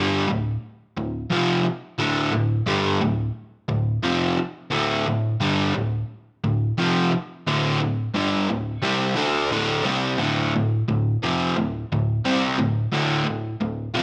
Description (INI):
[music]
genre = rock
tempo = 88 BPM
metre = 4/4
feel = straight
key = D minor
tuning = A4 = 440 Hz
[part]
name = overdriven semi-hollow guitar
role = solo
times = 0.0-14.0 s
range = D2 to D4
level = -23 LUFS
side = equal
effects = none
[sound]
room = moderate large studio reverb, RT60 1.1 s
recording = none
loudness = -23 LUFS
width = mono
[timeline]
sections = 0.0-10.2 A section; 10.2-14.0 B section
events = none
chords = 0.0 Dm